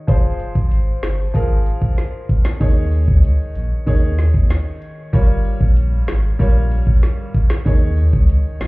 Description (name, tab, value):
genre	dancehall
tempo	95 BPM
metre	4/4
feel	straight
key	F minor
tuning	A4 = 440 Hz
part	warm concert grand piano	accompaniment	0.0-8.7 s	Eb3 to Db5	-26 LUFS	equal	none
part	warm sub bass	bass	0.1-8.7 s	F1 to Eb2	-16 LUFS	equal	none
part	island pop drum kit	drums	0.1-8.7 s	hi-hat, kick drum, snare drum	-16 LUFS	equal	none
room	little or no reverb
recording	heard muffled through a wall, club reverb, EQ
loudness	-14 LUFS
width	side -22 dB against mid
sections	0.1-8.7 A section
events	none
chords	0.1 Fm; 2.6 Eb7sus4; 5.1 Gm7b5; 7.7 Eb7sus4